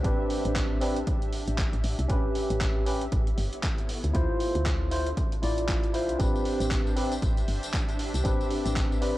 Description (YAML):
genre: deep house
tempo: 117 BPM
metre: 4/4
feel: swing 59% on 16ths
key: A minor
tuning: A4 = 439 Hz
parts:
  - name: tine electric piano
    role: stabs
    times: 0.0-9.2 s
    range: C4 to D5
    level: -30 LUFS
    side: equal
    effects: lush chorus, sidechain pumping, cassette tape, tape echo
  - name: woody FM bass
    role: bass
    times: 0.0-9.2 s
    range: G1 to D2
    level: -30 LUFS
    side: equal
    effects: sidechain pumping
  - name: dusty soul sampler-style drum kit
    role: drums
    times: 0.0-9.1 s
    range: handclaps, hi-hat, tambourine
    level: -36 LUFS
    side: equal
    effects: overdrive, studio ambience, cassette tape
  - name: electronic kick drum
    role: drums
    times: 0.0-8.9 s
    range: none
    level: -29 LUFS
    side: equal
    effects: studio ambience, cassette tape
  - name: granular cloud pad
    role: texture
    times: 0.0-9.2 s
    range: B3 to E5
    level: -38 LUFS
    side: equal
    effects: built-in reverb, sidechain pumping, cassette tape
room: little or no reverb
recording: home recording on cassette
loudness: -25 LUFS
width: side -16 dB against mid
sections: 0.0-9.2 A section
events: none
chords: 0.0 Am11; 2.1 A7; 3.9 Dm9; 6.2 Am11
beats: | 0.04 0.56 1.07 1.58 | 2.10 2.61 3.12 3.63 | 4.15 4.66 5.17 5.68 | 6.20 6.71 7.22 7.74 | 8.25 8.76